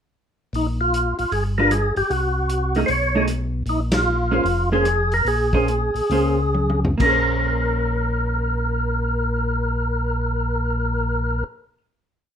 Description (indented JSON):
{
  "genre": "soul jazz organ trio",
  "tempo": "130-154 BPM",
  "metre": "4/4",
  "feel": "swing 65% on 8ths",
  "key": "Bb dorian",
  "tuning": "A4 = 442 Hz",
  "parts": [
    { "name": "tonewheel organ", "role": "bass", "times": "0.5-11.4 s", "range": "F1 to Db2", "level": "-23 LUFS", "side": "equal", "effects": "slow rotary speaker" },
    { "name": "vintage drum kit", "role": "drums", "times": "0.5-7.1 s", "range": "crash cymbal, hi-hat, kick drum, ride cymbal, rim click, snare drum, toms", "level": "-27 LUFS", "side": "equal", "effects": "none" },
    { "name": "percussive tonewheel organ", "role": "melody", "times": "0.6-11.4 s", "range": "Eb4 to C#5", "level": "-22 LUFS", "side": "equal", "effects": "slow rotary speaker, overdrive, chorus vibrato" },
    { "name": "vintage hollow-body jazz guitar", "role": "accompaniment", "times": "1.6-11.8 s", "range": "G3 to C5", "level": "-24 LUFS", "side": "right 2 dB", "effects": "none" }
  ],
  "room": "light reverb",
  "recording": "minimal, uncompressed stereo recording",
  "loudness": "-19 LUFS",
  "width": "side -8 dB against mid",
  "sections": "0.5-7.0 A section; 7.0-10.7 final chord",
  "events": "slowing down 3.7-7.0; band accent 3.9; drum fill 6.5-7.0",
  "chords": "0.5 Bb5; 1.3 G7; 2.1 Cdim; 2.9 B13; 3.7 Bbm9",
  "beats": "| 0.54 0.93 1.32 1.72 | 2.11 2.50 2.89 3.28 | 3.67 4.06 4.46 4.86 | 5.26 5.68 6.10 6.54 | 6.99 7.45 7.91 8.37 | 8.83 9.29 9.75 10.21"
}